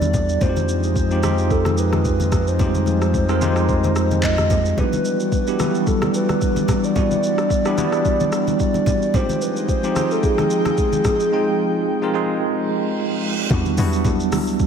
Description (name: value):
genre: amapiano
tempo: 110 BPM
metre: 4/4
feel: swing 55% on 16ths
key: unclear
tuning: A4 = 441 Hz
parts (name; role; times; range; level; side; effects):
- hollow clarinet-like synth lead; melody; 0.0-13.0 s; Ab4 to Eb5; -23 LUFS; equal; chorus, ping-pong delay
- bell-like tine electric piano; accompaniment; 0.0-14.7 s; F#3 to G5; -22 LUFS; right 2 dB; medium stereo tremolo
- airy breathy pad; sustained chords; 0.0-13.5 s; E3 to G5; -26 LUFS; left 1 dB; chorus, sidechain pumping
- punchy sub bass; bass; 0.0-4.7 s; E2 to F2; -21 LUFS; equal; none
- smooth R&B drum kit; drums; 0.0-14.7 s; handclaps, hi-hat, kick drum, rim click, shaker; -24 LUFS; equal; overdrive
- congas; percussion; 0.0-14.5 s; none; -27 LUFS; left 4 dB; none
- reverse cymbal; sound effects; 12.7-13.5 s; none; -30 LUFS; right 6 dB; none
- hollow log drum bass; bass; 13.5-14.7 s; D2 to E2; -23 LUFS; equal; none
room: moderate lush hall reverb, RT60 1.8 s, digital ambience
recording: dreamy mix soaked in reverb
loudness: -17 LUFS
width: side -7 dB against mid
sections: 0.0-13.5 A section; 13.5-14.7 B section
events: reverse cymbal 12.7-13.5; drop 13.5-14.7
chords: 0.4 Fm9; 4.8 Em9; 9.1 Fm9; 13.5 Em9